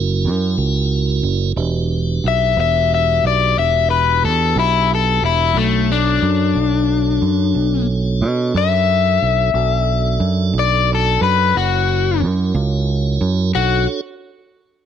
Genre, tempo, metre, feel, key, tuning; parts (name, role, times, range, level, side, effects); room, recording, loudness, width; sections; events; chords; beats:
slow blues; 60 BPM (dotted quarters); 12/8; straight; B minor; A4 = 440 Hz
tonewheel organ; sustained chords; 0.0-14.0 s; C#4 to D5; -26 LUFS; right 4 dB; slow rotary speaker
fingered electric bass; bass; 0.0-13.9 s; E1 to B2; -17 LUFS; right 3 dB
crunchy overdriven guitar; melody; 2.3-13.9 s; A3 to E5; -16 LUFS; left 10 dB
light reverb; -14 LUFS; side -9 dB against mid
0.0-13.5 A section; 13.5-14.9 B section
overdriven electric guitar solo 0.0-13.5
0.0 F#7; 1.6 Em7; 5.6 Bm7; 11.5 F#7; 13.5 Bm7
0.57 | 1.57 2.57 3.57 4.56 | 5.56 6.56 7.56 8.55 | 9.55 10.55 11.55 12.55 | 13.54